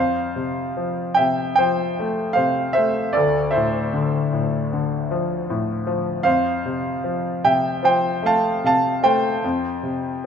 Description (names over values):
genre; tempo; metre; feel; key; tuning
classical, lyrical solo piano; 76 BPM; 4/4; rubato; F major; A4 = 441 Hz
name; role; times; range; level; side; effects
clear grand piano; solo; 0.0-10.3 s; D2 to A5; -18 LUFS; equal; none
room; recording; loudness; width
moderate scoring stage reverb, RT60 1.9 s; none; -18 LUFS; side -7 dB against mid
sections
0.0-10.3 A section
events
none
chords
0.0 Fadd9; 3.1 Dmadd9; 6.2 F; 9.4 Fsus2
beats
0.76 1.57 2.36 | 3.14 3.92 4.70 5.47 | 6.25 7.04 7.83 8.63 | 9.43 10.24